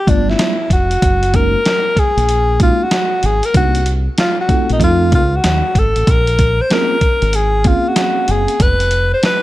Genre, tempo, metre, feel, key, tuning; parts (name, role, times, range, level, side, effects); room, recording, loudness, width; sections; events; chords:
hip hop, jazz-hop; 95 BPM; 4/4; swing 64% on 16ths; A4 = 440 Hz
breathy alto saxophone; melody; 0.0-9.4 s; D4 to C5; -16 LUFS; left 1 dB
mellow tine electric piano; accompaniment; 0.1-8.6 s; G3 to F5; -22 LUFS; right 1 dB; medium stereo tremolo
deep dub fingered electric bass; bass; 0.1-9.1 s; F1 to F2; -16 LUFS; equal
dusty soul sampler-style drum kit; drums; 0.1-9.4 s; hi-hat, kick drum, snare drum; -16 LUFS; equal
little or no reverb; -12 LUFS; side -16 dB against mid
0.0-9.4 A section
0.0 G9; 1.0 Gb69; 3.5 Cm7b5; 4.8 F7; 6.1 Bbm9; 8.6 F(b5, no3)